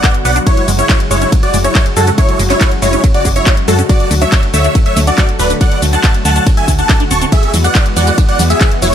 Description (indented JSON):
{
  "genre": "uplifting trance",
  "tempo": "140 BPM",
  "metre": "4/4",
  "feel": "straight",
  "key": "F# minor",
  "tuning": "A4 = 440 Hz",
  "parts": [
    { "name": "big supersaw lead", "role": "melody", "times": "0.0-8.9 s", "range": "D4 to C#6", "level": "-16 LUFS", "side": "equal", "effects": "phaser, sidechain pumping, tape echo" },
    { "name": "supersaw stab", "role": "second line", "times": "0.0-8.9 s", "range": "A4 to C#6", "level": "-21 LUFS", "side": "equal", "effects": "phaser, vintage 12-bit sampler grit, sidechain pumping, tape echo" },
    { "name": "lush unison pad", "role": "sustained chords", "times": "0.0-8.9 s", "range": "C#3 to F#4", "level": "-20 LUFS", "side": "left 1 dB", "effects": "chorus, sidechain pumping" },
    { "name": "liquid acid bass", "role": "arpeggios", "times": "0.0-8.9 s", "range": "E3 to D4", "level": "-22 LUFS", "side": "right 1 dB", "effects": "phaser, wide subtle chorus, sidechain pumping, tape echo" },
    { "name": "electronic kick drum", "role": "drums", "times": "0.0-8.7 s", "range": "none", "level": "-12 LUFS", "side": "equal", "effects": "none" },
    { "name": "house drum kit", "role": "drums", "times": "0.0-8.9 s", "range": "handclaps, hi-hat, ride cymbal, shaker", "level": "-18 LUFS", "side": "left 1 dB", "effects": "sidechain pumping on hats, sidechain pumping on perc, sidechain pumping on cymbals" },
    { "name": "solid FM bass", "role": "bass", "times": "0.3-8.9 s", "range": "D1 to F#2", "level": "-14 LUFS", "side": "equal", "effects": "sidechain pumping" }
  ],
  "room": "digital ambience",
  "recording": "none",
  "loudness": "-9 LUFS",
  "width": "side -9 dB against mid",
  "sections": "0.0-8.9 A section",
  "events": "none",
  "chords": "0.5 F#sus2; 3.9 D; 7.3 Eadd9",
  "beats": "0.04 | 0.47 0.89 1.32 1.75 | 2.18 2.61 3.04 3.46 | 3.89 4.32 4.75 5.18 | 5.61 6.04 6.46 6.89 | 7.32 7.75 8.18 8.61"
}